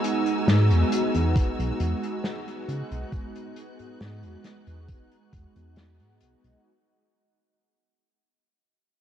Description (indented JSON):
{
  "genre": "vaporwave",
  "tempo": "68 BPM",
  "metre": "4/4",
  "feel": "straight",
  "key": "E major",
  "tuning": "A4 = 444 Hz",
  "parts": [
    { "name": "mellow synth brass", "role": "accompaniment", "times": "0.0-6.7 s", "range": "G#3 to F#4", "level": "-29 LUFS", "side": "right 1 dB", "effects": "lush chorus, analog delay" },
    { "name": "rich symphonic string section", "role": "sustained chords", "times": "0.0-6.6 s", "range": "D#4 to F#6", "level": "-35 LUFS", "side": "equal", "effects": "none" },
    { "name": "unplugged drum kit", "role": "drums", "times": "0.0-6.6 s", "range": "hi-hat, snare drum", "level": "-29 LUFS", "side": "left 1 dB", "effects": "none" },
    { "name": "chorused synth bass", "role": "bass", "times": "0.5-6.6 s", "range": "B1 to C#3", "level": "-24 LUFS", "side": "equal", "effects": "none" },
    { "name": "electronic kick drum", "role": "drums", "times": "1.4-5.5 s", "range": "none", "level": "-25 LUFS", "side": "equal", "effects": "overdrive" }
  ],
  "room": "moderate huge ambient reverb, RT60 4.1 s",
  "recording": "dreamy mix soaked in reverb, cassette tape",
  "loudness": "-22 LUFS",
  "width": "side -10 dB against mid",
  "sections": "0.0-6.7 A section",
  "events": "fade-out 0.0-6.7; filter sweep on analog synth bass 0.0-6.7",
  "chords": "0.0 Emaj9"
}